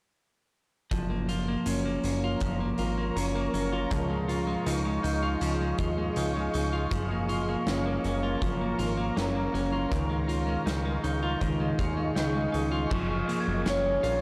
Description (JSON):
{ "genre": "dream pop", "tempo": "80 BPM", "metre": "4/4", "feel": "straight", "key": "unclear", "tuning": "A4 = 444 Hz", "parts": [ { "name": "granular cloud pad", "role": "sustained chords", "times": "2.0-14.2 s", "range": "Ab4 to Db6", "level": "-38 LUFS", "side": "equal", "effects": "built-in reverb" }, { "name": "clean electric guitar", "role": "arpeggios", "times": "0.9-14.2 s", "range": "Eb3 to F4", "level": "-32 LUFS", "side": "equal", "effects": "subtle chorus, analog delay" }, { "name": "fat analog bass", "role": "bass", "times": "0.9-14.2 s", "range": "Gb1 to Eb2", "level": "-34 LUFS", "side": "equal", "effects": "none" }, { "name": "oversized low-tuned drum kit", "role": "drums", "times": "0.9-14.2 s", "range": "crash cymbal, hi-hat, kick drum, snare drum", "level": "-38 LUFS", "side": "equal", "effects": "none" }, { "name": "glockenspiel with hard plastic mallets", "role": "texture", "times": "12.9-14.2 s", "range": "Db6 to Ab6", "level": "-39 LUFS", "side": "equal", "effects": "analog delay" }, { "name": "warbly nostalgic lead", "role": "melody", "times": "13.7-14.2 s", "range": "Db5", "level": "-28 LUFS", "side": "equal", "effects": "chorus" } ], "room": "light reverb, small room ambience", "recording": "none", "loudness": "-29 LUFS", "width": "mono", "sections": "0.9-12.9 A section; 12.9-14.2 B section", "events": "none", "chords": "0.9 Gbmaj7; 3.9 Dbadd9; 6.9 Gbmaj7; 9.9 Dbadd9; 12.9 Gbmaj7" }